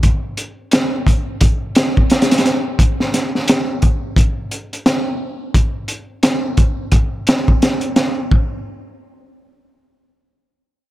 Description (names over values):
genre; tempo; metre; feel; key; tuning
trip hop; 87 BPM; 4/4; swing 60% on 16ths; none; none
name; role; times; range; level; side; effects
crunchy breakbeat drum kit; drums; 0.0-8.5 s; hi-hat, kick drum, snare drum; -14 LUFS; equal; none
room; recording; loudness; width
light reverb; none; -14 LUFS; side -15 dB against mid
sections
0.0-8.3 A section; 8.3-10.9 B section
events
none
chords
none